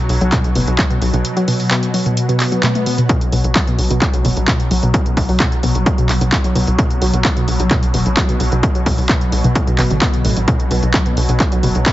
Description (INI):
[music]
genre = driving peak-time techno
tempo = 130 BPM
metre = 4/4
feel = straight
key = unclear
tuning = A4 = 440 Hz
[part]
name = warbly dusty pluck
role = riff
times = 0.0-11.9 s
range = A2 to F#3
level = -20 LUFS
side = equal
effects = chorus, overdrive, sidechain pumping, digital delay
[part]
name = swarming drone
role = drone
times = 0.0-11.9 s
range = B2 to F#3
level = -23 LUFS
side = equal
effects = built-in reverb, sidechain pumping
[part]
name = tight sequencer bass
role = bass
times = 0.1-11.8 s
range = F#1 to C2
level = -18 LUFS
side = equal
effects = sidechain pumping
[part]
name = techno drum kit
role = drums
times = 0.1-11.9 s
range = handclaps, hi-hat, toms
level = -20 LUFS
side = equal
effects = overdrive, sidechain pumping on hats, sidechain pumping on toms
[part]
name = electronic kick drum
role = drums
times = 0.3-11.9 s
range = none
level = -16 LUFS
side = equal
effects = overdrive
[part]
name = swell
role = sound effects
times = 2.4-3.1 s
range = none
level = -24 LUFS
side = equal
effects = none
[sound]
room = digital ambience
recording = heavily compressed radio sound, multiband compression, nothing above 7.8 kHz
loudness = -13 LUFS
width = side -15 dB against mid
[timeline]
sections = 0.0-11.9 A section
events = swell 2.4-3.1; drum fill 2.6-3.1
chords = 0.0 B5